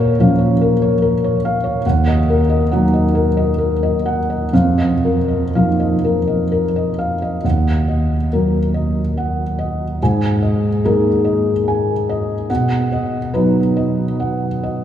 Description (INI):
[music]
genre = neoclassical minimalist piano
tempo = 59-73 BPM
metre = 3/4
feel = rubato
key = Eb minor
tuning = A4 = 441 Hz
[part]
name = felt-muted upright piano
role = solo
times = 0.0-14.8 s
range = Eb2 to Ab5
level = -14 LUFS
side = equal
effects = none
[sound]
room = wet cathedral reverb, RT60 4.6 s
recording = recorded in a church or concert hall, small room ambience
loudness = -14 LUFS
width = side -10 dB against mid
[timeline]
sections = 0.0-7.4 A section; 7.4-14.8 B section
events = none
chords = 0.0 Bbm; 1.8 Ebm; 4.5 Bbsus4/F; 7.4 Ebm; 10.0 Absus2; 12.5 B